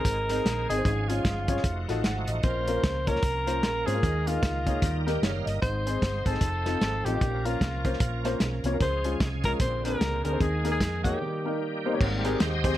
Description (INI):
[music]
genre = uptempo gospel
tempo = 151 BPM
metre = 4/4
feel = swing 60% on 8ths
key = Ab major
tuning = A4 = 440 Hz
[part]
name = breathy alto saxophone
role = melody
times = 0.0-11.6 s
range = F4 to C5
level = -30 LUFS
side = equal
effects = none
[part]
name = bright tonewheel organ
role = sustained chords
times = 0.0-12.8 s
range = Db3 to G5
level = -35 LUFS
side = right 3 dB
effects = slow rotary speaker, overdrive, chorus vibrato
[part]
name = warm soul drum kit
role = drums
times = 0.0-12.8 s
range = crash cymbal, hi-hat, kick drum, snare drum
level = -28 LUFS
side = equal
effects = none
[part]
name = hollow-body short-scale fingered electric bass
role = bass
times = 0.1-12.7 s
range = F1 to Ab2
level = -31 LUFS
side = equal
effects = none
[part]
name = warm upright piano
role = accompaniment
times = 0.3-12.8 s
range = Ab2 to Gb5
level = -31 LUFS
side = left 2 dB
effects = none
[sound]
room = light reverb, studio ambience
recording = none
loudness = -24 LUFS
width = side -13 dB against mid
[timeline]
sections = 0.0-12.0 A section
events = tonewheel organ fill 4.8-5.6; break 11.2-12.0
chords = 0.0 Ab; 0.9 Db/Ab; 1.6 F7b9; 2.4 Bbm; 4.0 Ebsus4; 4.8 Eb; 5.6 Ab; 6.4 F7; 7.2 Bbm; 8.8 Db; 9.6 Bb9; 10.4 Ebsus4; 11.2 Eb; 12.0 Abmaj9